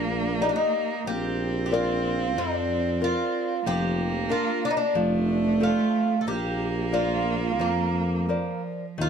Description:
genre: fado-style ballad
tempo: 91 BPM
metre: 4/4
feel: rubato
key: Bb major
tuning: A4 = 440 Hz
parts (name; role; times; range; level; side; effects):
- Irish bouzouki; melody; 0.0-9.1 s; Bb3 to A4; -28 LUFS; right 1 dB; plate reverb
- rich cello; second line; 0.0-9.0 s; F3 to C4; -28 LUFS; right 4 dB; none
- nylon-string guitar; accompaniment; 0.0-9.1 s; Eb3 to D5; -30 LUFS; left 4 dB; none
- breathy tuba; bass; 0.0-9.1 s; F1 to F2; -29 LUFS; equal; none
room: moderate studio reverb, RT60 0.6 s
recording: none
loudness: -23 LUFS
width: side -7 dB against mid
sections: 0.0-9.0 A section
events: none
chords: 0.0 Ebmaj7; 1.1 Bb; 3.7 Bb/F; 4.9 F; 6.3 Bbadd9

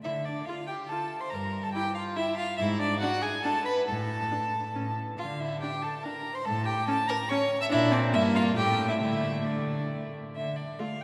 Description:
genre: quick classical-period movement for string quartet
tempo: 140 BPM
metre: 3/4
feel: straight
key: D minor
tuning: A4 = 441 Hz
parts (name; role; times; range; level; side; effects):
- rich violin; melody; 0.0-11.0 s; D5 to E6; -34 LUFS; equal; none
- warm violin; second line; 0.0-10.9 s; D4 to E5; -35 LUFS; equal; none
- rich cello; bass; 0.0-10.7 s; G2 to D3; -36 LUFS; equal; none
- warm viola; accompaniment; 0.5-10.9 s; A3 to F4; -36 LUFS; equal; none
room: wet cathedral reverb, RT60 4.7 s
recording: recorded in a church or concert hall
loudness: -29 LUFS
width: mono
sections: 0.0-10.4 A section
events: none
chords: 0.0 Dm; 1.3 Gm13; 2.6 G#m7b5; 3.9 N.C.; 5.2 Dsus4; 6.5 A; 7.7 Bb; 8.1 Edim/G; 8.6 Emadd11/A; 9.0 D5

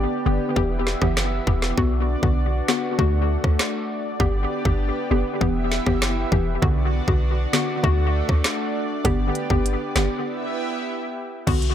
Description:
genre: dancehall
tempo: 99 BPM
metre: 4/4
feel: straight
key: unclear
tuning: A4 = 441 Hz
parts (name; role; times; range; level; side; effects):
- hollow square pluck; accompaniment; 0.0-11.7 s; D3 to G4; -25 LUFS; left 2 dB; chorus, tape echo
- lush unison pad; sustained chords; 0.0-11.5 s; A3 to E5; -27 LUFS; equal; chorus, sidechain pumping
- clean 808-style bass; bass; 0.0-11.7 s; E1 to D2; -23 LUFS; equal; none
- island pop drum kit; drums; 0.6-11.7 s; crash cymbal, hi-hat, kick drum, rim click, snare drum; -23 LUFS; equal; none
room: light reverb, digital ambience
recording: echo-heavy mix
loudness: -20 LUFS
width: side -10 dB against mid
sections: 0.0-11.5 A section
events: break 0.0-1.8, 10.3-11.5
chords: 0.0 G; 0.6 Em; 1.8 Bm; 3.0 D; 4.2 G; 5.4 Em; 6.6 Bm; 7.8 D; 9.0 G; 10.3 Em

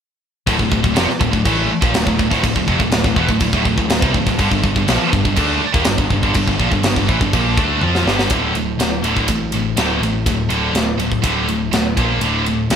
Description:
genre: heavy metal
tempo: 123 BPM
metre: 4/4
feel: straight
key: D minor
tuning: A4 = 440 Hz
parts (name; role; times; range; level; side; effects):
- heavy high-gain guitar; riff; 0.5-12.8 s; D2 to F4; -20 LUFS; right 7 dB; distortion
- scooped high-gain guitar; riff; 0.5-12.8 s; D2 to F4; -21 LUFS; left 6 dB; distortion
- picked electric bass; bass; 0.5-12.8 s; D1 to F2; -21 LUFS; equal; none
- tight metal drum kit; drums; 0.5-12.8 s; crash cymbal, kick drum, ride cymbal, snare drum, toms; -19 LUFS; equal; none
room: light reverb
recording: band playing live in one room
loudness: -14 LUFS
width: side -8 dB against mid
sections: 0.5-8.3 A section; 8.3-12.8 B section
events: drum fill 7.8-8.3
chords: 0.5 Dm; 4.4 G5; 8.3 D5; 12.0 Bb5; 12.2 D5

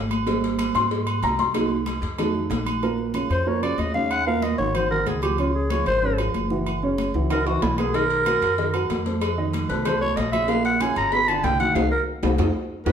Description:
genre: Afro-Cuban jazz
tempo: 188 BPM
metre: 4/4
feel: straight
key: Bb minor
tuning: A4 = 440 Hz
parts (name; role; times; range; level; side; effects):
- upright bass; bass; 0.0-12.9 s; Gb1 to Ab2; -28 LUFS; left 1 dB; none
- agogo bells and timbales; percussion; 0.1-12.9 s; none; -30 LUFS; right 6 dB; none
- congas; percussion; 0.1-12.9 s; none; -31 LUFS; left 4 dB; none
- dark upright piano; accompaniment; 0.3-12.9 s; Bb2 to C6; -25 LUFS; right 2 dB; none
- cowbell; percussion; 0.3-2.7, 7.9-12.9 s; none; -31 LUFS; left 6 dB; none
- growling clarinet; melody; 3.3-12.9 s; Fb4 to B5; -23 LUFS; equal; none
room: wet large studio reverb, RT60 1.1 s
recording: band playing live in one room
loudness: -20 LUFS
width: side -8 dB against mid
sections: 0.0-2.8 A section; 2.8-12.9 A section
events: upright piano solo 0.0-2.8; clarinet solo 2.8-12.9; drum fill 7.3-7.9, 12.2-12.9; band accent 11.8-12.9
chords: 0.3 Abmaj9; 1.5 Cm7b5; 2.2 F7b9; 2.8 Bbmadd11; 4.1 Ebm7; 4.7 Ab5; 5.4 Dbmaj7; 6.7 Gb7(no3); 7.9 Bmaj7; 9.2 F7; 10.5 Bbm; 11.1 G7; 11.8 Cdim; 12.4 F5

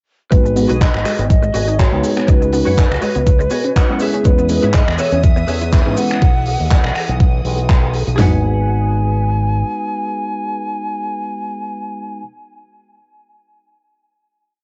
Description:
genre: nu-disco, nu disco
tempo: 122 BPM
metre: 4/4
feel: swing 54% on 16ths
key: G# minor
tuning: A4 = 440 Hz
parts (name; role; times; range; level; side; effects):
- mellow hollow silver concert flute; melody; 0.3-12.2 s; G#4 to G#5; -24 LUFS; equal; cassette tape, tape echo
- mellow tine electric piano; accompaniment; 0.3-12.2 s; G#3 to B4; -24 LUFS; equal; sidechain pumping, cassette tape
- unison pluck; arpeggios; 0.3-8.4 s; F#3 to G#4; -27 LUFS; equal; cassette tape, sidechain pumping, tape echo
- direct-recorded clean electric guitar; riff; 0.3-12.3 s; F#4 to G#5; -29 LUFS; equal; ensemble chorus, cassette tape
- fingered electric bass with an envelope filter; bass; 0.3-9.6 s; G#1 to G#2; -21 LUFS; equal; none
- damped 70s drum kit; drums; 0.3-8.2 s; finger snaps, handclaps, hi-hat; -26 LUFS; equal; cassette tape
- pop drum kit; drums; 0.3-8.3 s; hi-hat, kick drum, snare drum, toms; -15 LUFS; equal; overdrive, cassette tape
- cabasa; percussion; 0.3-6.2 s; none; -38 LUFS; equal; none
- string machine, full ensemble; sustained chords; 4.2-8.2 s; E3 to D#6; -30 LUFS; equal; phaser, ensemble chorus, sidechain pumping, cassette tape
room: light reverb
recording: home recording on cassette, nothing above 7.9 kHz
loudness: -16 LUFS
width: mono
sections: 0.3-8.2 drop; 8.2-12.1 final chord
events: drop 0.3-8.2; clean electric guitar fill 3.3-4.3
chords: 0.3 G#m7; 2.3 C#9sus4; 4.0 E6; 6.2 B; 8.2 G#m7

